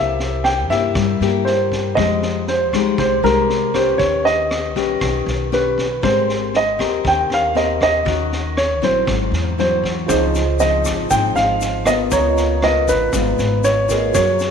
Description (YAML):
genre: bossa nova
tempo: 118 BPM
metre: 4/4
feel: straight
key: unclear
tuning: A4 = 441 Hz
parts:
  - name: dark baby grand piano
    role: melody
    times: 0.0-14.5 s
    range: Bb4 to G5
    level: -18 LUFS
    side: right 2 dB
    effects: none
  - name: nylon-string guitar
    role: accompaniment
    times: 0.0-14.5 s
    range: Ab2 to B4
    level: -21 LUFS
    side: left 9 dB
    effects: none
  - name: upright bass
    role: bass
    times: 0.0-14.5 s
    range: Ab1 to G2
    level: -24 LUFS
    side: equal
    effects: none
  - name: vintage drum kit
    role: drums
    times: 0.2-14.5 s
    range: kick drum, rim click, snare drum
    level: -26 LUFS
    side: right 1 dB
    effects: none
  - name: tine electric piano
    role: accompaniment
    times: 10.1-14.5 s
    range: F4 to Bb5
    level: -24 LUFS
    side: right 12 dB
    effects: analog chorus
  - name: egg shaker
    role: percussion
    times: 10.1-14.5 s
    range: none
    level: -32 LUFS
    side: left 13 dB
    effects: none
room: moderate echo chamber reverb, RT60 1.7 s, studio reverb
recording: 1960s-style stereo with parts hard left and right, lossy compression artefacts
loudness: -15 LUFS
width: side -6 dB against mid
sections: 0.0-14.5 A section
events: none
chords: 0.0 C7; 2.0 Fm9; 4.0 Ebaug7; 6.0 Abmaj9; 8.1 Ebm7; 9.1 Abaug7; 10.1 Dbmaj9; 12.1 Db13